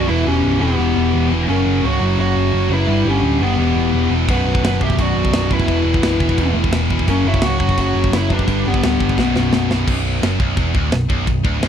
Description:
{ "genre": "heavy metal", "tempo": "172 BPM", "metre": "4/4", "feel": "straight", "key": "B minor", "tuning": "A4 = 440 Hz", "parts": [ { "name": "high-gain lead guitar", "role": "melody", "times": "0.0-9.7 s", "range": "B3 to B4", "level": "-20 LUFS", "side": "left 2 dB", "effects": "distortion, tape echo" }, { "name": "high-gain lead guitar", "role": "second line", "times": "0.0-9.2 s", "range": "G4 to F#5", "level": "-28 LUFS", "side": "right 4 dB", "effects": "distortion" }, { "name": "heavy high-gain guitar", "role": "riff", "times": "0.0-11.7 s", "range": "B1 to G3", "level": "-24 LUFS", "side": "right 16 dB", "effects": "distortion" }, { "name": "scooped high-gain guitar", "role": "riff", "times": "0.0-11.7 s", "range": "B1 to G3", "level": "-24 LUFS", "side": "left 13 dB", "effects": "distortion" }, { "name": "thick fuzz guitar", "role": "riff", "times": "0.0-9.9 s", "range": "B1 to G3", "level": "-24 LUFS", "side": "equal", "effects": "distortion" }, { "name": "overdriven picked electric bass", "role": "bass", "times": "0.0-11.7 s", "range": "B0 to G1", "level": "-20 LUFS", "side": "equal", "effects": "none" }, { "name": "tight metal drum kit", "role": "drums", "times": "4.3-11.7 s", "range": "crash cymbal, kick drum, snare drum", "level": "-20 LUFS", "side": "equal", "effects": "none" } ], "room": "little or no reverb", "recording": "dry, close 1970s-style studio recording", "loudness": "-14 LUFS", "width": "side -8 dB against mid", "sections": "0.0-9.9 A section; 9.9-11.7 B section", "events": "drum fill 9.2-9.9", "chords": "0.1 Em; 1.5 F#; 2.9 G5; 3.6 Em; 4.3 Bm; 5.7 E5; 7.1 F#5; 8.5 G; 9.2 B5; 9.9 Bm" }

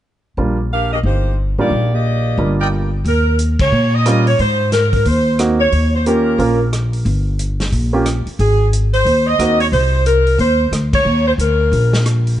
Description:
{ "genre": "jazz, big band swing", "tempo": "180 BPM", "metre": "4/4", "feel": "swing 62% on 8ths", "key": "Eb major, Eb mixolydian from 3.0 s", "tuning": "A4 = 440 Hz", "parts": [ { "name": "warm baby grand piano", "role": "accompaniment", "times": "0.4-9.6 s", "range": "G3 to Bb4", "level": "-20 LUFS", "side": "right 3 dB", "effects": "none" }, { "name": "upright bass", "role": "bass", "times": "0.4-12.4 s", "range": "G1 to Bb2", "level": "-15 LUFS", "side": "equal", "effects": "none" }, { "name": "mellow saxophone section", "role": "melody", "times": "0.7-12.0 s", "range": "Bb3 to F5", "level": "-17 LUFS", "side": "equal", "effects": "none" }, { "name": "clear trumpet section", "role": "stabs", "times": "2.6-2.7 s", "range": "Eb4 to G5", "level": "-24 LUFS", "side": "right 3 dB", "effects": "none" }, { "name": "vintage drum kit", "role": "drums", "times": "3.1-12.3 s", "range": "hi-hat, kick drum, ride cymbal, rim click, snare drum", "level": "-24 LUFS", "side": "equal", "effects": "none" } ], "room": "light reverb", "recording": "nothing above 10.8 kHz", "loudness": "-13 LUFS", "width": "side -12 dB against mid", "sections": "0.4-3.0 A section; 3.0-12.4 B section", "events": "band accent 3.5, 10.9", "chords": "0.4 Ebmaj7; 3.0 Eb7; 4.4 Ab7; 5.7 Eb7; 8.4 Ab; 11.1 Eb5" }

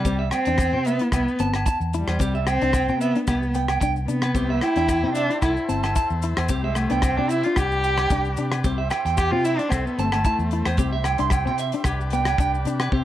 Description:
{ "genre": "highlife guitar band", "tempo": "112 BPM", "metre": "4/4", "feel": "swing 54% on 16ths", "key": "C major", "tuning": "A4 = 440 Hz", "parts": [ { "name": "dark cello", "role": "melody", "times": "0.0-10.9 s", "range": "G3 to G4", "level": "-24 LUFS", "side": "left 1 dB", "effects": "none" }, { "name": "clean electric guitar", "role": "arpeggios", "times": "0.0-13.0 s", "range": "E4 to C6", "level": "-27 LUFS", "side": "right 6 dB", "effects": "analog delay" }, { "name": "fingered electric bass", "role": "bass", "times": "0.0-13.0 s", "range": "G1 to C3", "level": "-26 LUFS", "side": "equal", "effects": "none" }, { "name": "damped 70s drum kit", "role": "drums", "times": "0.0-13.0 s", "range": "hi-hat, kick drum, rim click", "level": "-26 LUFS", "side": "equal", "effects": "none" }, { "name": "clean electric guitar", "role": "accompaniment", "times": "0.1-13.0 s", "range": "B3 to E4", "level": "-30 LUFS", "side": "left 8 dB", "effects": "none" }, { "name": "maracas", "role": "percussion", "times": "0.1-12.9 s", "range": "none", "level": "-40 LUFS", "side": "left 9 dB", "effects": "none" }, { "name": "agogo bells", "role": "percussion", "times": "0.3-12.9 s", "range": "none", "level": "-33 LUFS", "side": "left 4 dB", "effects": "none" }, { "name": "overdriven combo organ", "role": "sustained chords", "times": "4.4-13.0 s", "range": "D4 to C5", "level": "-35 LUFS", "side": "left 2 dB", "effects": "none" } ], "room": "light reverb, studio reverb", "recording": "none", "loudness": "-20 LUFS", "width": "side -12 dB against mid", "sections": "0.0-12.9 A section", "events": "cello solo 0.0-12.9", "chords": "0.1 C; 1.1 Am; 2.2 C; 3.3 G/C; 4.3 C; 5.4 Am; 6.5 C; 7.6 G/C; 8.6 C; 9.7 Am; 10.8 C; 11.9 G/C" }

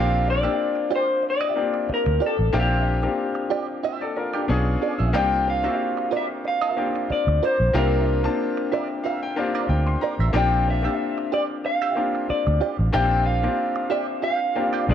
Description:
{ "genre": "soul", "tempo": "92 BPM", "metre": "4/4", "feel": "swing 54% on 16ths", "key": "unclear", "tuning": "A4 = 445 Hz", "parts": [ { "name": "electric guitar through a small old amp", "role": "melody", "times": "0.0-14.9 s", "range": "G4 to G5", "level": "-24 LUFS", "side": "left 1 dB", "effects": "none" }, { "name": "clear baby grand piano", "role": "accompaniment", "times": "0.0-14.9 s", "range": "G#3 to C6", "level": "-26 LUFS", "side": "left 4 dB", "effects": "none" }, { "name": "direct-recorded clean electric guitar", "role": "riff", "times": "0.0-14.9 s", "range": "F4 to E5", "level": "-29 LUFS", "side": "right 9 dB", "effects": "wah, spring reverb" }, { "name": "vintage muted fingered electric bass", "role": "bass", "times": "0.0-14.9 s", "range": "A1 to D2", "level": "-22 LUFS", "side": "right 1 dB", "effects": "none" } ], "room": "light reverb, studio reverb", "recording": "none", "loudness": "-20 LUFS", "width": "side -9 dB against mid", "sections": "0.0-14.9 A section", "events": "grand piano fill 8.4-10.3", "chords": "0.0 Bb6; 4.5 Bdim7; 5.1 C9sus4; 10.3 Bb6" }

